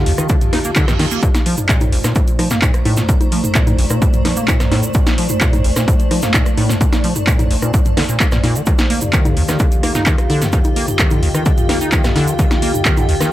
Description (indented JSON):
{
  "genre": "acid house",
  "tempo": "129 BPM",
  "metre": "4/4",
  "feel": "straight",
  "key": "Bb major",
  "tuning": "A4 = 440 Hz",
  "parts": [
    { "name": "warbly tape-like pad", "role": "sustained chords", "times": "0.0-13.3 s", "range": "Eb2 to F5", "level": "-24 LUFS", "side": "left 1 dB", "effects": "chorus, built-in reverb, sidechain pumping" },
    { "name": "deep acid bass", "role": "riff", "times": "0.0-13.3 s", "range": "Bb1 to Eb4", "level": "-20 LUFS", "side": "equal", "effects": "tube saturation, analog chorus, sidechain pumping, tape echo" },
    { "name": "granular cloud pad", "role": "texture", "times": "0.0-13.3 s", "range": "A3 to Bb5", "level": "-25 LUFS", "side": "equal", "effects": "built-in reverb, sidechain pumping" },
    { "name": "electro analog drum machine", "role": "drums", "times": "0.1-13.3 s", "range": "congas, handclaps, hi-hat, rim click, snare drum, toms", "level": "-19 LUFS", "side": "equal", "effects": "none" },
    { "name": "tube shaker", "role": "percussion", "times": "0.2-13.3 s", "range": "none", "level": "-29 LUFS", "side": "right 4 dB", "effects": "none" },
    { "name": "electronic kick drum", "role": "drums", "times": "0.3-12.9 s", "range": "none", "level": "-16 LUFS", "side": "equal", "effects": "overdrive" },
    { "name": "reverse cymbal", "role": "sound effects", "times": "0.5-1.2 s", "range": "none", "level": "-28 LUFS", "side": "right 8 dB", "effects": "none" }
  ],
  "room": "light reverb",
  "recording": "none",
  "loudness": "-12 LUFS",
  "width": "side -14 dB against mid",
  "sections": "0.0-13.3 A section",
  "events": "reverse cymbal 0.5-1.2",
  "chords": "0.0 Ebmaj9; 1.2 Bbmaj9; 8.7 Ebmaj9"
}